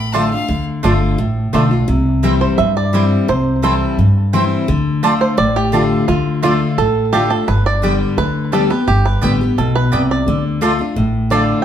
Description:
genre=bluegrass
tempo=172 BPM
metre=4/4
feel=straight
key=D dorian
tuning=A4 = 443 Hz
part: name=clear fiddle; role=melody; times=0.0-0.6 s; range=F5 to B5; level=-26 LUFS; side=left 3 dB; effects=none
part: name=picked steel-string acoustic guitar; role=accompaniment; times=0.0-11.6 s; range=G2 to G4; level=-16 LUFS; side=left 2 dB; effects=none
part: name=upright bass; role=bass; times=0.0-11.5 s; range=G1 to G2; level=-18 LUFS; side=right 1 dB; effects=none
part: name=bluegrass banjo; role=melody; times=0.1-11.6 s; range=A3 to E5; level=-19 LUFS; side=right 4 dB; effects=tape echo
part: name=mandolin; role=stabs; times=0.1-11.4 s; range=A3 to A5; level=-20 LUFS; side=right 2 dB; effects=none
room=wet studio reverb, RT60 0.8 s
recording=heard from further back in the room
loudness=-13 LUFS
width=side -9 dB against mid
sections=0.0-1.9 A section; 1.9-11.6 B section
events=five-string banjo solo 1.9-11.6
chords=0.0 Dm; 1.9 C; 4.7 Dm; 7.5 G; 10.3 Dm

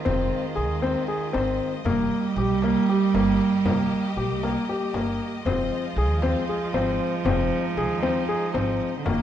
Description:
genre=contemporary instrumental, chamber music in an uneven meter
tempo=234 BPM (eighths)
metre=7/8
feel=straight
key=F minor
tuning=A4 = 438 Hz
part: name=dark cello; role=second line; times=0.0-9.2 s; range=D3 to G3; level=-26 LUFS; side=right 6 dB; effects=none
part: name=clear studio string section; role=sustained chords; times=0.0-9.2 s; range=Ab3 to Eb5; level=-34 LUFS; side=left 1 dB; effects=none
part: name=warm grand piano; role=arpeggios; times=0.1-9.2 s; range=Bb3 to Ab4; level=-26 LUFS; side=left 4 dB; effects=none
part: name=upright bass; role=bass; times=0.1-9.2 s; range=F1 to Eb2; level=-29 LUFS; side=right 1 dB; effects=none
part: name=frame drum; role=percussion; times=0.1-9.2 s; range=none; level=-32 LUFS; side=left 3 dB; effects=none
room=light reverb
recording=dark, warm production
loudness=-22 LUFS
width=side -10 dB against mid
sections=0.0-9.2 A section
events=none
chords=0.0 Fm7; 1.9 Eb/F; 5.5 Fm7

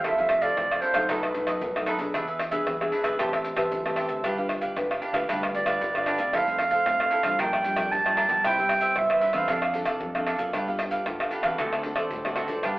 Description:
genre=samba and choro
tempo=114 BPM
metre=4/4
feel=straight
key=unclear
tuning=A4 = 440 Hz
part: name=warm clarinet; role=second line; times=0.0-1.8, 5.6-9.8 s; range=B4 to A5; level=-24 LUFS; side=right 2 dB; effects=none
part: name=cavaquinho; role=accompaniment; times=0.0-12.8 s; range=D4 to A5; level=-29 LUFS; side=right 1 dB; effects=none
part: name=nylon-string guitar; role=accompaniment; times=0.0-12.8 s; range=F#2 to B4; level=-32 LUFS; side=left 1 dB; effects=none
part: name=overdriven fingered electric bass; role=bass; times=0.0-12.8 s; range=F1 to G2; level=-39 LUFS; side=equal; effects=none
part: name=maracas, surdo, pandeiro and tamborim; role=percussion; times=0.0-12.8 s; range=none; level=-29 LUFS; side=equal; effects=none
room=wet studio reverb, RT60 0.6 s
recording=heard from further back in the room, telephone sound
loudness=-23 LUFS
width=side -19 dB against mid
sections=0.0-12.8 A section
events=clarinet solo 0.0-12.8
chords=0.0 Fmaj7/C; 1.1 B7; 2.1 E7; 3.2 Am9; 4.2 G7; 6.3 Fmaj7; 7.4 Bb6; 8.4 Cmaj7; 9.5 F6; 10.5 G9; 11.6 D7

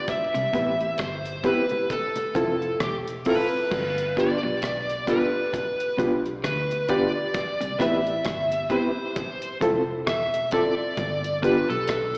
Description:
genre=roots reggae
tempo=66 BPM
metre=4/4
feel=swing 58% on 16ths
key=G mixolydian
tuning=A4 = 440 Hz
part: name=smooth overdriven lead guitar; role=melody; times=0.0-12.2 s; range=G4 to E5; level=-29 LUFS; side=equal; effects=tape echo, slapback echo
part: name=deep reggae drum kit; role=drums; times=0.1-12.2 s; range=crash cymbal, hi-hat, kick drum, rim click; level=-36 LUFS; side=equal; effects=none
part: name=congas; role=percussion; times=0.1-12.1 s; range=none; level=-41 LUFS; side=equal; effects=none
part: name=clean electric guitar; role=riff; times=0.3-12.0 s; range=E2 to D3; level=-40 LUFS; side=equal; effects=none
part: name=vintage muted fingered electric bass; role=bass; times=0.4-12.2 s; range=E1 to D2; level=-38 LUFS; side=equal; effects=none
part: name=mellow electric guitar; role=accompaniment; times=0.5-11.6 s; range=B3 to A4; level=-33 LUFS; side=equal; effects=spring reverb, tape echo, slapback echo
part: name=reed electric piano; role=stabs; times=0.5-11.6 s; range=C4 to B4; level=-30 LUFS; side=equal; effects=fast tremolo, slapback echo
room=moderate lush hall reverb, RT60 2.4 s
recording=live gig heard through the venue's PA, recital hall reverb, AM radio sound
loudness=-25 LUFS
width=mono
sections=0.0-3.7 A section; 3.7-12.2 A section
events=none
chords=0.1 Cmaj7; 1.9 Fmaj7; 3.7 G7; 7.3 Cmaj7; 9.2 Fmaj7; 11.0 G7

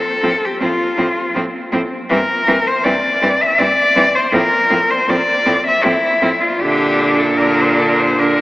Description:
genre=classical, lyrical piece for cello ensemble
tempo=80 BPM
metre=3/4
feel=rubato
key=F major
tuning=A4 = 440 Hz
part: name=clear cello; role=melody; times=0.0-8.4 s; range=E4 to E5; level=-15 LUFS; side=left 1 dB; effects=none
part: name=clear cello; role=second line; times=0.2-8.4 s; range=C4 to D4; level=-20 LUFS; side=right 1 dB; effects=none
part: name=clear cello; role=accompaniment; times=0.2-8.4 s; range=D3 to F3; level=-21 LUFS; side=left 1 dB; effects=none
part: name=rich cello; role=bass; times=0.2-8.4 s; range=G2 to Bb2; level=-21 LUFS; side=right 1 dB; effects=none
room=wet cathedral reverb, RT60 5.3 s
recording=in a vast, echoing space, AM radio sound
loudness=-12 LUFS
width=side -18 dB against mid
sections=0.0-8.4 A section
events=none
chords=0.0 F/A; 2.1 C/G; 4.3 F/A; 6.6 Bb6

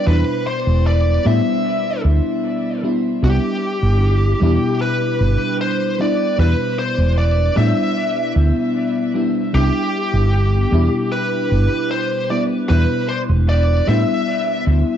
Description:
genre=vaporwave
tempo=76 BPM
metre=4/4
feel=straight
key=unclear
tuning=A4 = 439 Hz
part: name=bluesy overdriven lead guitar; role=melody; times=0.0-14.6 s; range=G4 to E5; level=-22 LUFS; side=equal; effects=distortion, tape echo
part: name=FM electric piano with soft pad layer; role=accompaniment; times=0.0-15.0 s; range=B2 to E4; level=-20 LUFS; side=left 1 dB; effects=wide subtle chorus, analog delay
part: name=woody fretless electric bass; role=bass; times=0.1-14.8 s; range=E1 to A2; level=-15 LUFS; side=equal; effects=none
room=light reverb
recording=echo-heavy mix, nothing above 7.8 kHz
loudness=-15 LUFS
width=side -9 dB against mid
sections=0.0-15.0 A section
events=none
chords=0.0 Em7; 3.2 Cmaj9 (rootless); 6.0 Em7; 9.5 Cmaj9 (rootless); 12.3 Em7

